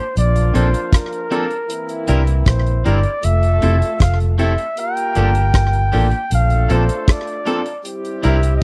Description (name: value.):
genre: lovers rock reggae.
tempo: 78 BPM.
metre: 4/4.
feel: straight.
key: unclear.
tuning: A4 = 439 Hz.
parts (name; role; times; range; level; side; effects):
breathy flugelhorn; melody; 0.0-8.6 s; Bb4 to G5; -25 LUFS; equal; tape echo.
warm horn section; second line; 0.2-8.6 s; E3 to Bb4; -29 LUFS; equal; none.
vintage muted fingered electric bass; bass; 0.2-8.6 s; F1 to C2; -18 LUFS; equal; none.
damped 70s drum kit; drums; 0.2-8.6 s; hi-hat, kick drum, rim click; -19 LUFS; equal; none.
warm concert grand piano; accompaniment; 0.5-8.4 s; Bb3 to Bb4; -24 LUFS; equal; none.
twangy electric guitar; stabs; 0.5-8.4 s; F3 to Bb4; -28 LUFS; equal; slapback echo.
room: little or no reverb.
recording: dry, close 1970s-style studio recording, lossy compression artefacts.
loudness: -17 LUFS.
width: mono.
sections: 0.0-8.6 A section.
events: none.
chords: 0.2 Bbmaj7; 1.7 C7; 3.2 Fmaj7; 4.8 Gm7; 6.3 Bbmaj7; 7.8 C7.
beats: | 0.16 0.93 1.70 2.47 | 3.23 4.00 4.77 5.54 | 6.31 7.08 7.85 8.62.